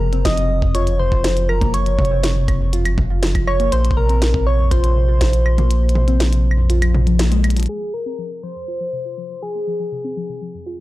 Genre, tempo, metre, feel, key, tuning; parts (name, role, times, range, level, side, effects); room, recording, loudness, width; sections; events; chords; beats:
IDM; 121 BPM; 4/4; straight; A4 = 439 Hz
soft struck synth lead; melody; 0.0-10.4 s; Ab4 to Eb5; -23 LUFS; left 1 dB; chorus, analog delay
harp-like synth pluck; arpeggios; 0.0-10.8 s; F2 to F4; -24 LUFS; left 1 dB; chorus, analog delay
warm sub bass; bass; 0.0-7.7 s; Gb1 to Bb1; -17 LUFS; equal; tube saturation
glitchy drum kit; drums; 0.1-7.8 s; claves, hi-hat, snare drum, toms; -24 LUFS; right 1 dB; overdrive, studio reverb
electronic kick drum; drums; 0.3-5.3 s; -20 LUFS; equal; studio reverb
digital ambience; dry, gritty hardware recording, low-pass filter; -15 LUFS; side -17 dB against mid
0.0-7.7 A section; 7.7-10.8 B section
kick drops out 5.7-7.7; band accent 7.2; drum fill 7.4; filter sweep on synth pluck 7.7-10.8; filter sweep 7.7-10.8
0.0 Gb6; 3.7 Bbsus2
0.25 0.75 1.24 | 1.74 2.23 2.73 3.23 | 3.72 4.22 4.71 5.21 | 5.71 6.20 6.70 7.19 | 7.69 8.19 8.68 9.18 | 9.67 10.17 10.66